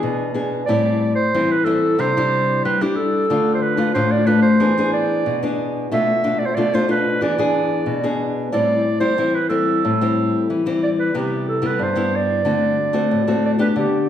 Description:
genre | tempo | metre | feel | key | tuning
samba | 92 BPM | 4/4 | straight | A minor | A4 = 440 Hz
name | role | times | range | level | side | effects
mellow clarinet | melody | 0.0-14.1 s | G4 to E5 | -20 LUFS | right 3 dB | none
nylon-string guitar | accompaniment | 0.0-14.1 s | G2 to G#4 | -19 LUFS | left 2 dB | none
room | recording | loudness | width
wet recital hall reverb, RT60 1.4 s | heard from further back in the room | -16 LUFS | side -10 dB against mid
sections
0.0-11.1 A section; 11.1-14.1 B section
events
none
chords
0.0 E7 (rootless); 0.7 Am7; 2.0 Cadd9; 3.3 Dm; 4.6 E7; 5.9 Bm7b5; 7.2 E7; 8.5 Am7; 11.1 Cmaj7; 12.4 D7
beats
0.03 | 0.68 1.33 1.99 2.64 | 3.30 3.95 4.61 5.26 | 5.91 6.57 7.22 7.87 | 8.53 9.18 9.84 10.49 | 11.14 11.80 12.45 13.10 | 13.76

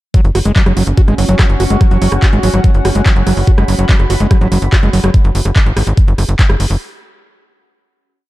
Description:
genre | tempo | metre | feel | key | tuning
psychedelic trance | 144 BPM | 4/4 | straight | unclear | A4 = 440 Hz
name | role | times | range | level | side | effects
overdriven acid bass | riff | 0.1-5.1 s | F#3 to F#4 | -17 LUFS | right 1 dB | distortion, auto-pan, sidechain pumping, dub echo
drum and bass drum kit | drums | 0.1-6.8 s | handclaps, hi-hat, rim click | -20 LUFS | equal | overdrive
electronic kick drum | drums | 0.1-6.5 s | none | -10 LUFS | equal | overdrive
warbly tape-like pad | texture | 0.7-5.1 s | C#4 to C#6 | -22 LUFS | equal | chorus, built-in reverb, sidechain pumping
tight sequencer bass | bass | 0.2-6.8 s | F#1 to G#1 | -14 LUFS | equal | none
room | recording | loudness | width
digital ambience | dark, warm production | -9 LUFS | side -17 dB against mid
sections
0.1-6.8 drop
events
drop 0.1-6.8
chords
0.1 F#5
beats
| 0.14 0.56 0.97 1.39 | 1.81 2.23 2.64 3.06 | 3.48 3.89 4.31 4.72 | 5.14 5.56 5.97 6.39

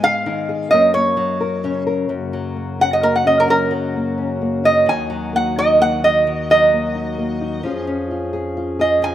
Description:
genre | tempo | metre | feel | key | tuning
acoustic folk duo or small band | 130 BPM | 3/4 | straight | F# major | A4 = 440 Hz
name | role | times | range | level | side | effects
lap resonator guitar | melody | 0.0-9.1 s | A#4 to G#5 | -15 LUFS | right 2 dB | none
nylon-string guitar | accompaniment | 0.0-9.1 s | F#2 to A#4 | -23 LUFS | left 3 dB | none
pipe organ, principal | sustained chords | 2.1-9.1 s | D#2 to G#4 | -25 LUFS | left 2 dB | none
room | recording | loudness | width
light reverb, small room ambience | rough home demo mix | -15 LUFS | side -12 dB against mid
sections
0.0-2.1 A section; 2.1-9.1 B section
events
resonator guitar played with a steel bar solo 2.1-9.1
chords
0.0 G#m; 0.7 F#; 4.9 D#m; 7.7 C#/E#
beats
0.25 | 0.71 1.18 1.64 | 2.10 2.56 3.02 | 3.49 3.95 4.41 | 4.88 5.34 5.80 | 6.26 6.73 7.19 | 7.65 8.11 8.57 | 9.04

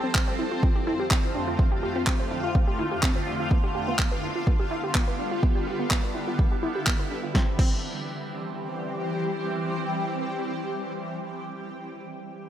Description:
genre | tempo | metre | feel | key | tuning
progressive house | 125 BPM | 4/4 | straight | C major | A4 = 440 Hz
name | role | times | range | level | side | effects
shimmering ambient pad | sustained chords | 0.0-11.9 s | F2 to G4 | -29 LUFS | equal | chorus, built-in reverb, phaser, sidechain pumping
wide unison pluck | arpeggios | 0.0-7.7 s | B3 to C5 | -32 LUFS | equal | sidechain pumping, dub echo
deep house drum kit | drums | 0.1-7.7 s | crash cymbal, handclaps, snare drum | -29 LUFS | equal | overdrive
electronic kick drum | drums | 0.1-7.7 s | none | -24 LUFS | equal | overdrive
room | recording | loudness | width
light reverb, digital ambience | none | -24 LUFS | side -10 dB against mid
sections
0.0-7.3 A section; 7.3-11.2 B section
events
none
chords
0.0 Dm7/F; 3.5 G7; 7.3 C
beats
0.15 0.63 1.11 | 1.59 2.07 2.55 3.03 | 3.51 3.99 4.47 4.95 | 5.43 5.91 6.39 6.87 | 7.35 7.83 8.31 8.79 | 9.27 9.75 10.23 10.71

